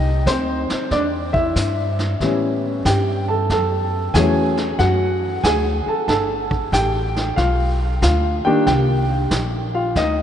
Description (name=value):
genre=jazz piano trio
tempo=93 BPM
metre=4/4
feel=swing 66% on 8ths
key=unclear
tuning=A4 = 440 Hz
part: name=warm baby grand piano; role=melody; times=0.0-10.2 s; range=Eb3 to A5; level=-19 LUFS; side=equal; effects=none
part: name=upright bass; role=bass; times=0.0-10.2 s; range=G1 to A2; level=-21 LUFS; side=equal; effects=none
part: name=vintage brush drum kit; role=drums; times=0.3-10.2 s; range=brushed snare drum, hi-hat, kick drum, snare drum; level=-26 LUFS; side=equal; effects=none
room=wet cathedral reverb, RT60 6.7 s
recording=in a vast, echoing space, nothing above 10.4 kHz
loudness=-17 LUFS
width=side -9 dB against mid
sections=0.0-10.2 A section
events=none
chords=0.0 Ebmaj7(no3); 0.9 Em; 2.2 A7; 3.5 Dadd9; 6.1 G7; 8.7 Cm7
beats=0.27 | 0.92 1.56 2.21 2.86 | 3.51 4.15 4.80 5.45 | 6.09 6.74 7.38 8.03 | 8.67 9.31 9.96